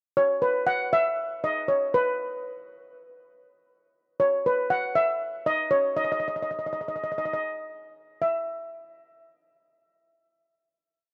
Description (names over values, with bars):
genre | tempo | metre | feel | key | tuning
calypso | 119 BPM | 4/4 | swing 54% on 16ths | unclear | A4 = 442 Hz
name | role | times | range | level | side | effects
steel pan | solo | 0.2-8.5 s | B4 to F#5 | -26 LUFS | equal | none
room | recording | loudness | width
light reverb | none | -26 LUFS | mono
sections
0.2-8.2 verse; 8.2-10.2 final note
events
none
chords
none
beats
| 0.18 0.68 1.18 1.69 | 2.19 2.69 3.20 3.70 | 4.21 4.71 5.21 5.71 | 6.22 6.72 7.22 7.72 | 8.22